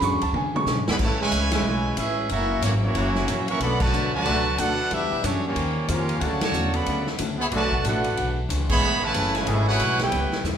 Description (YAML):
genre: jazz, big band swing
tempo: 184 BPM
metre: 4/4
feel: swing 62% on 8ths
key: A major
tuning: A4 = 440 Hz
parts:
  - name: archtop guitar, miked and amplified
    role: accompaniment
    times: 0.0-10.6 s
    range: B2 to C#5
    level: -31 LUFS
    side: left 3 dB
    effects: none
  - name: warm concert grand piano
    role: accompaniment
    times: 0.0-0.7 s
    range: D3 to C#6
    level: -25 LUFS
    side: right 2 dB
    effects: none
  - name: upright bass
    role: bass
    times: 0.0-10.6 s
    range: F#1 to C#3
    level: -28 LUFS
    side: equal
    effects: none
  - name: swinging big-band drum kit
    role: drums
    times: 0.0-10.5 s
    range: crash cymbal, hi-hat, kick drum, ride cymbal, snare drum, toms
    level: -29 LUFS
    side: equal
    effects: none
  - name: bright trumpet section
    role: melody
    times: 0.9-10.4 s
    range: A3 to C#6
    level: -25 LUFS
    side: right 1 dB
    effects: none
  - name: bright trombone section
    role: second line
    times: 0.9-10.4 s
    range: C#3 to G4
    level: -28 LUFS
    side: right 2 dB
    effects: none
  - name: dark trombone section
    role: sustained chords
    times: 3.0-10.0 s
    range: C#3 to G#4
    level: -33 LUFS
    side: equal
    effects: none
room: wet recital hall reverb, RT60 1.2 s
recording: recorded in a church or concert hall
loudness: -21 LUFS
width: side -8 dB against mid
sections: 1.0-10.6 A section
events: drum fill 0.3-1.0; band accent 1.5, 3.8, 6.4, 8.7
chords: 0.0 E13; 1.0 Amaj9; 2.3 F#7; 3.6 Bm7; 4.9 Em9; 5.6 D#13; 6.2 Dmaj7; 7.5 Bm7; 8.2 E13; 8.8 Amaj9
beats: 0.01 0.34 0.66 | 0.99 1.31 1.64 1.97 | 2.29 2.62 2.95 3.27 | 3.60 3.93 4.25 4.58 | 4.91 5.23 5.56 5.88 | 6.21 6.54 6.86 7.19 | 7.51 7.84 8.17 8.49 | 8.82 9.14 9.47 9.80 | 10.12 10.45